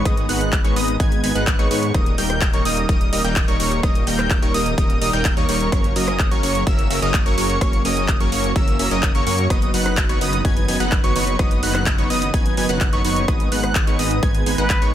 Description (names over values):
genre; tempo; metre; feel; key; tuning
EDM, festival progressive house; 127 BPM; 4/4; straight; G# minor; A4 = 440 Hz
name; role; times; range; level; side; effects
lush unison pad; sustained chords; 0.0-14.9 s; C#3 to B3; -28 LUFS; right 1 dB; chorus, sidechain pumping
wide unison lead; arpeggios; 0.0-14.9 s; C#6 to G#6; -26 LUFS; right 1 dB; sidechain pumping, ping-pong delay
supersaw stab; riff; 0.0-14.9 s; F#3 to G#5; -23 LUFS; equal; cassette tape, sidechain pumping, ping-pong delay
wide detuned saw bass; bass; 0.0-14.9 s; D#1 to G#2; -24 LUFS; equal; chorus, sidechain pumping
big-room dance drum kit; drums; 0.1-14.9 s; handclaps, hi-hat, rim click; -26 LUFS; equal; overdrive
electronic kick drum; drums; 0.1-14.8 s; none; -19 LUFS; equal; overdrive
trumpet with plunger mute; melody; 14.6-14.9 s; B4; -23 LUFS; equal; none
room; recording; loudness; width
little or no reverb; none; -16 LUFS; side -11 dB against mid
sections
0.0-14.9 A section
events
none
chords
0.0 G#m; 1.9 D#; 5.7 F#; 9.5 B/F#; 13.3 G#m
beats
| 0.06 0.53 1.00 1.47 | 1.95 2.42 2.89 3.36 | 3.83 4.31 4.78 5.25 | 5.72 6.20 6.67 7.14 | 7.61 8.09 8.56 9.03 | 9.50 9.98 10.45 10.92 | 11.39 11.87 12.34 12.81 | 13.28 13.76 14.23 14.70